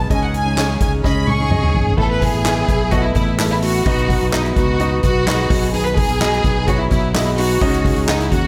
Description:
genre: piano-driven pop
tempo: 128 BPM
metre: 4/4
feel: straight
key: C# minor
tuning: A4 = 440 Hz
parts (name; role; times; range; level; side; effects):
- rich studio violin section; melody; 0.0-8.5 s; D#4 to C#6; -23 LUFS; equal; none
- clear baby grand piano; accompaniment; 0.0-8.5 s; A2 to F#5; -26 LUFS; equal; none
- lush unison pad; sustained chords; 0.0-2.0 s; D#3 to G#4; -35 LUFS; equal; none
- fingerpicked plugged-in steel-string acoustic guitar; riff; 0.0-8.5 s; B2 to B4; -29 LUFS; equal; none
- fingered electric bass; bass; 0.0-8.5 s; G#1 to D#2; -23 LUFS; equal; none
- soft-mallet drum kit; drums; 0.1-8.4 s; crash cymbal, handclaps, hi-hat, kick drum, snare drum, toms; -22 LUFS; equal; none
room: light reverb, studio ambience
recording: none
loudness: -17 LUFS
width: mono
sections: 0.0-2.0 A section; 2.0-8.5 B section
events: drum fill 1.0-2.0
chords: 0.1 C#sus2; 2.0 Asus2; 3.9 B; 5.5 G#m7/B; 7.6 C#sus2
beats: | 0.10 0.57 1.04 1.51 | 1.98 2.45 2.92 3.39 | 3.86 4.33 4.80 5.27 | 5.74 6.21 6.68 7.15 | 7.62 8.09

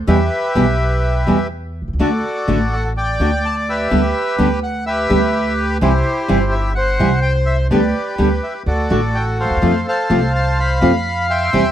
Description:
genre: tango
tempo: 126 BPM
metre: 4/4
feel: rubato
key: G major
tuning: A4 = 440 Hz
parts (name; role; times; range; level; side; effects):
- upright bass; bass; 0.0-11.7 s; G1 to F2; -19 LUFS; right 1 dB; none
- bandoneon; melody; 0.1-11.7 s; E4 to C6; -19 LUFS; equal; plate reverb
- nylon-string guitar; accompaniment; 0.1-11.6 s; B2 to G4; -16 LUFS; equal; none
room: light reverb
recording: none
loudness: -14 LUFS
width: side -11 dB against mid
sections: 0.0-11.7 A section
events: none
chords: 0.1 Em; 2.0 D; 3.9 G/D; 5.8 C; 7.7 G/D; 8.7 D; 9.6 F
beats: | 0.08 0.56 1.03 1.51 | 2.00 2.48 2.96 3.44 | 3.91 4.39 4.86 5.34 | 5.81 6.29 6.76 7.23 | 7.71 8.18 8.66 9.14 | 9.62 10.10 10.58 11.06 | 11.53

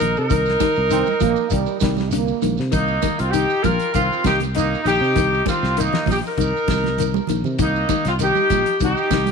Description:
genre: afrobeat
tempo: 99 BPM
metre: 4/4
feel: straight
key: C minor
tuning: A4 = 440 Hz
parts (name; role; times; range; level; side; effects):
- mellow horn section; melody; 0.0-9.3 s; Eb4 to Bb4; -20 LUFS; left 1 dB; none
- clear trumpet; second line; 0.0-9.3 s; Bb3 to F4; -29 LUFS; right 12 dB; none
- semi-hollow electric guitar; arpeggios; 0.0-9.3 s; D3 to F3; -25 LUFS; left 14 dB; analog chorus
- fingered electric bass; bass; 0.0-9.3 s; Bb1 to C3; -23 LUFS; right 1 dB; none
- damped 70s drum kit; drums; 0.0-9.3 s; hi-hat, kick drum, snare drum; -26 LUFS; left 2 dB; none
- shekere; percussion; 0.0-9.3 s; none; -32 LUFS; right 8 dB; none
- congas; percussion; 0.3-9.3 s; none; -27 LUFS; right 17 dB; none
- clear trombone section; second line; 0.9-2.6 s; G3 to C4; -24 LUFS; right 14 dB; none
room: light reverb, small room ambience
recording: 1960s-style stereo with parts hard left and right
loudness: -17 LUFS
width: side -5 dB against mid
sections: 0.0-9.3 A section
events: drum fill 6.8-7.6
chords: 0.0 Cm7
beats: | 0.30 0.91 1.52 2.12 | 2.73 3.34 3.94 4.55 | 5.16 5.77 6.38 6.98 | 7.59 8.20 8.81

